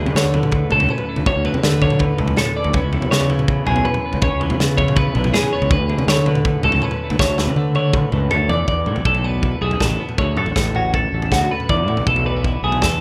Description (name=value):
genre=math rock and midwest emo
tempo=162 BPM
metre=4/4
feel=straight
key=D major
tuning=A4 = 440 Hz
part: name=twelve-string electric guitar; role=accompaniment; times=0.0-13.0 s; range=D2 to A4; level=-31 LUFS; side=equal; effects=warbly pitch drift
part: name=twelve-string electric guitar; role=arpeggios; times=0.0-13.0 s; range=F#4 to D5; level=-24 LUFS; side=equal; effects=spring reverb, analog delay
part: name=fuzz fingered electric bass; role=bass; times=0.0-13.0 s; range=A1 to D3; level=-22 LUFS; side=equal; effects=overdrive
part: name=modern studio drum kit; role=drums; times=0.1-13.0 s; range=kick drum, snare drum, toms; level=-23 LUFS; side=equal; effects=none
room=studio reverb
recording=rough home demo mix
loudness=-18 LUFS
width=mono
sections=0.0-8.7 A section; 8.7-13.0 B section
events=drum fill 7.2-8.7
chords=0.0 D5; 2.7 C#m7; 5.7 D5; 8.7 E7sus4; 10.2 Dmaj7; 11.7 E7sus4